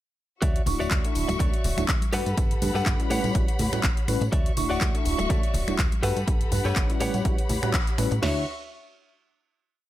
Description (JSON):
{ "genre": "filtered disco house", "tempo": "123 BPM", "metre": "4/4", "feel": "swing 55% on 16ths", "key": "D major", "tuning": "A4 = 442 Hz", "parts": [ { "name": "warm studio string section", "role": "sustained chords", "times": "0.4-8.5 s", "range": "F#4 to C#6", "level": "-35 LUFS", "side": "left 3 dB", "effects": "vintage 12-bit sampler grit, sidechain pumping" }, { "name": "direct-recorded clean electric guitar", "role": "riff", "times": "0.4-8.5 s", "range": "F#4 to F#5", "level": "-32 LUFS", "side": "right 1 dB", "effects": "vintage 12-bit sampler grit, sidechain pumping" }, { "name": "plucky analog bass", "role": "bass", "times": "0.4-8.5 s", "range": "D1 to A2", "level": "-28 LUFS", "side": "equal", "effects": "sidechain pumping" }, { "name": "house drum kit", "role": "drums", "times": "0.4-8.4 s", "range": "crash cymbal, kick drum, snare drum, toms", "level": "-26 LUFS", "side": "equal", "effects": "studio ambience" }, { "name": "house drum kit", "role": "drums", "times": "0.4-8.2 s", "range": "finger snaps, handclaps, hi-hat", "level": "-32 LUFS", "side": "left 1 dB", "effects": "sidechain pumping on hats, studio ambience" }, { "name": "tambourine and congas", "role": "percussion", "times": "0.4-8.2 s", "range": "none", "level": "-34 LUFS", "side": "left 2 dB", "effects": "sidechain pumping on perc" }, { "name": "tine electric piano", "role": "accompaniment", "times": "0.7-8.4 s", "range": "G3 to C#6", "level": "-30 LUFS", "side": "equal", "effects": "medium stereo tremolo, phaser, sidechain pumping" } ], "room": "little or no reverb", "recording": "none", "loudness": "-22 LUFS", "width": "side -14 dB against mid", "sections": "0.4-8.2 drop; 8.2-9.9 final chord", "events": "drop 0.4-8.2; band accent 7.7", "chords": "0.4 Dmaj9; 2.1 Gmaj9; 3.1 A13; 4.3 Dmaj9; 6.0 Gmaj9; 7.0 A13; 8.2 Dmaj9", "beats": "| 0.42 0.91 1.40 1.89 | 2.37 2.86 3.35 3.84 | 4.33 4.81 5.30 5.79 | 6.28 6.76 7.25 7.74 | 8.23" }